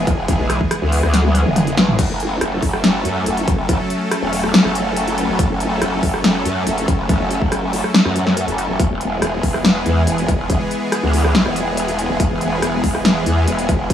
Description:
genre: heavy wobble dubstep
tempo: 141 BPM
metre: 4/4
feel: half-time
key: F# minor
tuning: A4 = 440 Hz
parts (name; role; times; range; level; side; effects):
- supersaw pad; sustained chords; 0.0-13.9 s; E3 to A4; -21 LUFS; equal; sidechain pumping
- growl bass; bass; 0.0-13.9 s; E1 to F#2; -19 LUFS; equal; chorus, overdrive
- big-room dance drum kit; drums; 0.1-13.9 s; crash cymbal, hi-hat, rim click, snare drum, toms; -18 LUFS; left 1 dB; overdrive
- electronic kick drum; drums; 0.1-13.9 s; none; -19 LUFS; equal; overdrive
room: digital ambience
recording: none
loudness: -15 LUFS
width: side -10 dB against mid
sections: 0.0-13.9 A section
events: drum fill 1.1-2.0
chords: 0.0 E; 2.0 F#m; 8.8 E

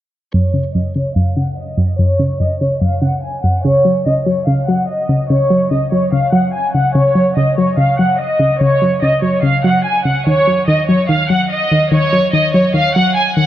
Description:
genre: hip hop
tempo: 145 BPM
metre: 4/4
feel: half-time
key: unclear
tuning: A4 = 439 Hz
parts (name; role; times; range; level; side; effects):
- warm studio violin section; melody; 0.3-13.5 s; Db5 to Ab5; -15 LUFS; equal; low-pass filter, digital delay
- soft round pluck; accompaniment; 0.3-13.5 s; Gb2 to Gb3; -14 LUFS; equal; chorus, low-pass filter
room: light reverb, studio reverb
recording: none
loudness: -12 LUFS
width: side -12 dB against mid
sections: 0.3-13.5 A section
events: filter sweep 0.3-13.5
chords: 0.3 Gb5; 3.6 Dbsus4; 10.3 Ebm7

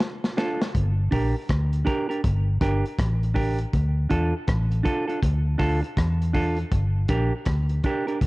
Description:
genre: roots reggae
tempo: 80 BPM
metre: 4/4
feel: swing 63% on 16ths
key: G dorian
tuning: A4 = 440 Hz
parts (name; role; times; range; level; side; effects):
- crunchy breakbeat drum kit; drums; 0.0-8.3 s; hi-hat, kick drum, rim click, snare drum; -26 LUFS; equal; none
- semi-hollow electric guitar; accompaniment; 0.4-8.2 s; D4 to Bb4; -28 LUFS; right 2 dB; dub echo
- vintage muted fingered electric bass; bass; 0.8-8.3 s; G1 to E2; -23 LUFS; equal; none
room: little or no reverb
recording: echo-heavy mix, cassette tape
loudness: -21 LUFS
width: side -22 dB against mid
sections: 0.7-8.3 A section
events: break 0.0-0.7; drum fill 0.0-0.7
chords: 0.0 Dm; 0.7 Gm; 3.7 Dm; 6.7 Gm

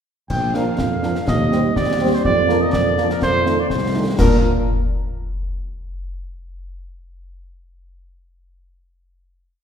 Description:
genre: military-style march for wind band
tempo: 123 BPM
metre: 2/4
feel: straight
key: Bb major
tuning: A4 = 440 Hz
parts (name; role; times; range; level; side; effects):
- mellow cornet; melody; 0.3-4.4 s; Bb4 to G5; -21 LUFS; right 1 dB; none
- warm tuba; bass; 0.3-4.4 s; Bb1 to Bb2; -21 LUFS; right 2 dB; none
- clash cymbals, concert bass drum and concert snare drum; drums; 0.3-4.5 s; none; -22 LUFS; left 1 dB; none
- warm French horn section; accompaniment; 0.5-4.4 s; C4 to C5; -26 LUFS; left 2 dB; none
- dark trombone section; sustained chords; 0.5-4.4 s; Eb3 to D4; -26 LUFS; right 1 dB; none
room: wet concert hall reverb, RT60 1.7 s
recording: heard from further back in the room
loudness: -16 LUFS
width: side -8 dB against mid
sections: 0.3-4.2 A section; 4.2-5.2 final chord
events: none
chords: 0.3 Bb; 1.3 Cm/Eb; 2.2 Bb/F; 3.2 F7; 4.2 Bb

